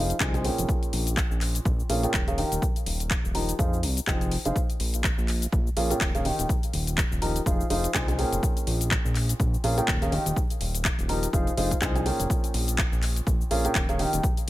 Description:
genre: piano house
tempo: 124 BPM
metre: 4/4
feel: swing 57% on 16ths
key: Bb dorian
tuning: A4 = 436 Hz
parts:
  - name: warm concert grand piano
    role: riff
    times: 0.0-14.2 s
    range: Bb2 to Bb5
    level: -29 LUFS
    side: equal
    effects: sidechain pumping, low-pass filter, ping-pong delay
  - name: fat analog bass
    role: bass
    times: 0.0-14.5 s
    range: Eb1 to F2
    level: -28 LUFS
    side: equal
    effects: tube saturation, sidechain pumping
  - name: house drum kit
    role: drums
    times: 0.1-14.5 s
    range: handclaps, hi-hat, shaker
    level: -30 LUFS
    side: left 2 dB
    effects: none
  - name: electronic kick drum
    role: drums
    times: 0.2-14.3 s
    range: none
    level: -27 LUFS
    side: equal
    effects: none
room: digital ambience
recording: none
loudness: -23 LUFS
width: side -16 dB against mid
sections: 0.0-14.5 A section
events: none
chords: 0.0 Fm7; 0.7 Bbm7; 2.4 Eb; 3.6 Fm7; 4.6 Bbm7; 6.3 Eb; 7.5 Fm7; 8.4 Bbm7; 10.1 Eb; 11.3 Fm7; 12.3 Bbm7; 14.0 Eb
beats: 0.20 | 0.69 1.17 1.65 2.14 | 2.62 3.11 3.59 4.07 | 4.56 5.04 5.53 6.01 | 6.49 6.98 7.46 7.94 | 8.43 8.91 9.40 9.88 | 10.36 10.85 11.33 11.81 | 12.30 12.78 13.27 13.75 | 14.23

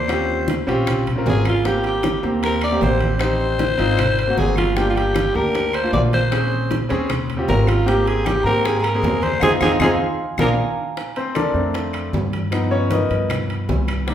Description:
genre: Afro-Cuban jazz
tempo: 155 BPM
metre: 4/4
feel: straight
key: Eb major, Bb major from 11.0 s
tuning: A4 = 440 Hz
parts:
  - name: growling alto saxophone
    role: melody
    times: 0.0-10.5 s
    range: F4 to D5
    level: -21 LUFS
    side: left 1 dB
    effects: none
  - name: Celtic harp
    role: second line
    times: 0.0-12.1 s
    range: F5 to D6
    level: -28 LUFS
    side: right 2 dB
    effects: none
  - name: upright bass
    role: bass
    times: 0.0-14.1 s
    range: G1 to Ab2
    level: -22 LUFS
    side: equal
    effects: none
  - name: clear concert grand piano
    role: accompaniment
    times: 0.1-14.1 s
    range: Eb3 to D#5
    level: -23 LUFS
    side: equal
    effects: none
  - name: bongos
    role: percussion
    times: 0.1-14.1 s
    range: none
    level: -29 LUFS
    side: left 1 dB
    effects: none
  - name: claves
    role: percussion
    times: 0.1-14.1 s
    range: none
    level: -34 LUFS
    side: left 4 dB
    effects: none
  - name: congas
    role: percussion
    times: 0.1-14.1 s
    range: none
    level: -29 LUFS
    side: equal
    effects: none
  - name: timbales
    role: percussion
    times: 0.1-14.1 s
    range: none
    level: -30 LUFS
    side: right 2 dB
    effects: none
room: wet large studio reverb, RT60 1.3 s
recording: band playing live in one room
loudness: -17 LUFS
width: side -10 dB against mid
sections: 0.0-11.0 A section; 11.0-14.1 B section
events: drum fill 9.4-11.0; band accent 9.4-11.0; grand piano fill 10.4-11.0; grand piano solo 11.0-14.1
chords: 0.1 Eb13; 1.7 Abmaj9; 3.2 Am7b5; 4.0 Ab9; 4.8 Gm7; 6.3 Bbm7; 7.1 Eb13; 7.9 Abmaj7; 9.4 Fm7; 10.2 Bb7; 11.0 Bbmaj7; 12.5 G7alt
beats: | 0.09 0.48 0.87 1.26 | 1.65 2.04 2.43 2.82 | 3.21 3.60 3.99 4.38 | 4.76 5.15 5.54 5.93 | 6.32 6.71 7.09 7.48 | 7.87 8.26 8.65 9.04 | 9.42 9.81 10.20 10.59 | 10.97 11.36 11.75 12.14 | 12.53 12.91 13.30 13.69 | 14.08

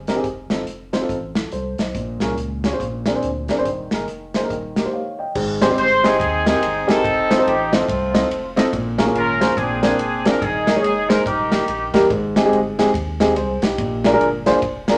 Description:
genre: uptempo gospel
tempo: 142 BPM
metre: 4/4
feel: swing 62% on 8ths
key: Ab major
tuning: A4 = 440 Hz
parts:
  - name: saturated sub bass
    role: bass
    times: 0.0-15.0 s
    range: Eb1 to Eb2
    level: -33 LUFS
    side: equal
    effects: none
  - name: dark upright piano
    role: accompaniment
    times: 0.1-15.0 s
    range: Ab2 to G5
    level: -22 LUFS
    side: equal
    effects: none
  - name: natural country drum kit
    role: drums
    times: 0.1-15.0 s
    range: crash cymbal, hi-hat, kick drum, ride cymbal, snare drum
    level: -25 LUFS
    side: equal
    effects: none
  - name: mellow horn section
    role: melody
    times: 5.8-12.1 s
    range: A3 to C5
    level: -22 LUFS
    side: equal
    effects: none
room: wet studio reverb, RT60 0.7 s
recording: none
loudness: -19 LUFS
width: mono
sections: 0.0-5.4 A section; 5.4-15.0 B section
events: break 4.9-5.4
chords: 0.2 F7; 1.9 Bbm7; 2.8 Bb9; 3.7 Ebsus4; 4.5 Eb; 5.4 Abmaj7; 7.0 F7; 8.7 Bbm7; 9.6 Bb9; 10.4 Ebsus4; 11.3 Eb; 12.1 Abmaj7; 13.8 Bb7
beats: | 0.24 0.67 1.09 1.52 | 1.95 2.38 2.80 3.23 | 3.65 4.08 4.50 4.93 | 5.35 5.78 6.20 6.62 | 7.04 7.46 7.89 8.31 | 8.73 9.15 9.57 9.99 | 10.41 10.84 11.26 11.68 | 12.10 12.52 12.94 13.36 | 13.78 14.20 14.62

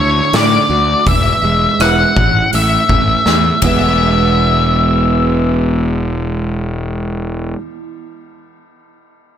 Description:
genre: quiet-loud alternative rock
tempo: 82 BPM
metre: 4/4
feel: straight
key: E mixolydian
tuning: A4 = 440 Hz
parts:
  - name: octave-fuzz lead guitar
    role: melody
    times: 0.0-7.6 s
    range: C#5 to F#5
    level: -14 LUFS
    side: left 3 dB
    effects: distortion, slapback echo, digital delay
  - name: fingerpicked steel-string acoustic guitar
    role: arpeggios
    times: 0.0-7.6 s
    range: E2 to F#4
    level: -18 LUFS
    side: right 4 dB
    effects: slapback echo
  - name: fuzz fingered electric bass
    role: bass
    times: 0.0-7.5 s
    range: E1 to A2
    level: -17 LUFS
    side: equal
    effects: overdrive
  - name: big rock drum kit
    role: drums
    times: 0.3-3.8 s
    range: hi-hat, kick drum, ride cymbal, rim click, snare drum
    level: -19 LUFS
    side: equal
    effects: none
room: moderate lush hall reverb, RT60 2.7 s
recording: big arena sound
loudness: -11 LUFS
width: side -9 dB against mid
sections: 0.0-4.0 A section; 4.0-6.9 B section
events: drum fill 3.3-4.0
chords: 0.0 D; 1.1 E; 2.2 A5; 3.6 E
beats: 0.33 | 1.06 1.79 2.53 3.26 | 3.99 4.73 5.46 6.19

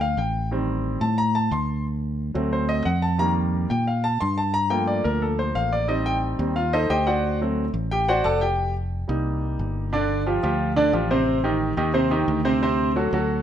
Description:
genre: latin, salsa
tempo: 178 BPM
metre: 4/4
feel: straight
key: G minor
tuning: A4 = 443 Hz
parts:
  - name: clear concert grand piano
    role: accompaniment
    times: 0.0-13.4 s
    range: C3 to C6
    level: -22 LUFS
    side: equal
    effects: none
  - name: fingered electric bass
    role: bass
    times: 0.0-13.4 s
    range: F1 to Bb2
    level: -25 LUFS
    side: equal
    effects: none
room: light reverb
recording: none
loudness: -21 LUFS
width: side -10 dB against mid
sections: 0.0-9.9 A section; 9.9-13.4 B section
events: grand piano solo 0.0-9.9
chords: 0.0 G7(no3); 0.5 Am7b5; 1.9 D7; 3.2 F7sus4; 4.5 Gm7; 5.9 Am7b5; 7.2 D7; 8.6 F7sus4; 9.9 G5; 11.3 Am7b5; 12.6 D7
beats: 0.18 | 0.51 0.85 1.18 1.52 | 1.86 2.19 2.53 2.87 | 3.20 3.54 3.87 4.21 | 4.55 4.88 5.22 5.56 | 5.89 6.23 6.57 6.90 | 7.24 7.58 7.91 8.25 | 8.58 8.92 9.26 9.59 | 9.93 10.27 10.60 10.94 | 11.28 11.61 11.95 12.29 | 12.62 12.96 13.30

